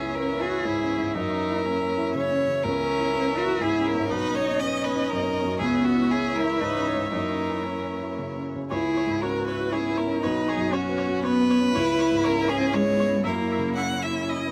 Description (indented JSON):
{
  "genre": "neoclassical piano and strings",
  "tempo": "110-124 BPM",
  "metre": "3/4",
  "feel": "rubato",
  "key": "C# dorian",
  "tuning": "A4 = 439 Hz",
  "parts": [
    { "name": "clear violin", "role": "melody", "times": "0.0-14.5 s", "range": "F#4 to F#5", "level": "-30 LUFS", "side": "equal", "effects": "none" },
    { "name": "warm cello", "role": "second line", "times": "0.0-14.3 s", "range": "G#3 to F#4", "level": "-28 LUFS", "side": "equal", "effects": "none" },
    { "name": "clear viola", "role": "accompaniment", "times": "0.0-14.4 s", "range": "C#5 to E5", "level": "-36 LUFS", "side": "equal", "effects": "none" },
    { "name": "felt-muted upright piano", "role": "accompaniment", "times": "0.0-14.5 s", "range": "B1 to C#5", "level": "-32 LUFS", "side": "equal", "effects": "none" },
    { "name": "clear studio string section", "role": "sustained chords", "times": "0.0-14.5 s", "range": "E3 to C#5", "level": "-39 LUFS", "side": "equal", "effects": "none" }
  ],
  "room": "little or no reverb",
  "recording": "close, detailed microphones",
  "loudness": "-25 LUFS",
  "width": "mono",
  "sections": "0.0-8.7 A section; 8.7-14.5 B section",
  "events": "none",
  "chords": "0.0 C#m7; 1.2 F#7; 2.6 C#m7; 4.1 Badd9; 5.6 C#m7; 7.1 F#7; 8.7 C#m7; 10.2 Badd9; 11.8 C#m7; 13.2 F#7",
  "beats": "0.16 0.66 | 1.16 1.65 2.13 | 2.63 3.12 3.61 | 4.10 4.60 5.09 | 5.59 6.09 6.60 | 7.12 7.64 8.17 | 8.71 9.23 9.73 | 10.23 10.73 11.24 | 11.76 12.25 12.74 | 13.25 13.77 14.28"
}